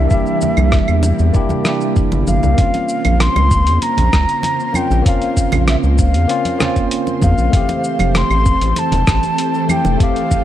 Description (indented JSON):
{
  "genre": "sunset chillout",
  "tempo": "97 BPM",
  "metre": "4/4",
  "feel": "straight",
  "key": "unclear",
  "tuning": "A4 = 441 Hz",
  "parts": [
    { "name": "breathy mellow concert flute", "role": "melody", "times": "0.0-10.4 s", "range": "E5 to C6", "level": "-20 LUFS", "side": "equal", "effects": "tape echo" },
    { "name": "bright tine electric piano", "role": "accompaniment", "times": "0.0-10.4 s", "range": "E3 to G4", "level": "-21 LUFS", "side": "moving between left 4 dB and right 5 dB", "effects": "auto-pan, tape echo" },
    { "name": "ethereal airy pad", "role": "sustained chords", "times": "0.0-10.4 s", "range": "C3 to C5", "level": "-22 LUFS", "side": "equal", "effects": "ensemble chorus, built-in reverb" },
    { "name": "round analog bass", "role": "bass", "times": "0.0-10.0 s", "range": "F1 to E2", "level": "-14 LUFS", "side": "equal", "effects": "tube saturation" },
    { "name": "dusty soul sampler-style drum kit", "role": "drums", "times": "0.1-10.4 s", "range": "cabasa, claves, hi-hat, rim click", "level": "-22 LUFS", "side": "right 1 dB", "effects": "overdrive" },
    { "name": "electronic kick drum", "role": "drums", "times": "0.1-10.4 s", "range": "none", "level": "-16 LUFS", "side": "equal", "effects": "overdrive" },
    { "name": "congas", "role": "percussion", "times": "0.4-10.4 s", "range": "none", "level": "-24 LUFS", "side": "right 2 dB", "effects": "none" }
  ],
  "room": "light reverb, digital ambience",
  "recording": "dark, warm production",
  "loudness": "-13 LUFS",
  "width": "side -12 dB against mid",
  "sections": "0.0-2.6 A section; 2.6-10.4 B section",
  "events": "none",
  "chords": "0.0 C7; 2.6 Bbmadd9; 7.5 Fmaj9"
}